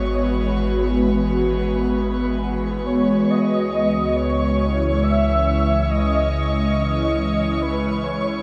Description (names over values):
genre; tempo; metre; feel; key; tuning
ambient; 69 BPM; 3/4; straight; C# minor; A4 = 442 Hz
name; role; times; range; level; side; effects
breathy flute-like synth lead; melody; 0.0-8.4 s; B4 to E5; -27 LUFS; equal; ensemble chorus, shimmer reverb, analog delay
airy breathy pad; sustained chords; 0.0-8.4 s; E3 to B4; -23 LUFS; equal; chorus, phaser, shimmer reverb
soft round pluck; arpeggios; 0.0-8.3 s; none; barely audible; none; none
warm sub bass; bass; 0.0-8.4 s; G#1 to C#2; -27 LUFS; equal; none
dark studio violin section; texture; 0.0-8.4 s; C#5 to C#6; -35 LUFS; equal; shimmer reverb
organ-like drone; drone; 4.1-8.4 s; C#3 to C#4; -34 LUFS; equal; ensemble chorus, built-in reverb
room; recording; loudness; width
wet spring reverb, RT60 2.7 s; echo-heavy mix, small room ambience; -20 LUFS; mono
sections
0.0-3.3 A section; 3.3-8.4 B section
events
none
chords
0.0 G#m7; 3.3 C#m9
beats
| 0.65 1.52 2.40 | 3.29 4.16 5.03 | 5.89 6.75 7.61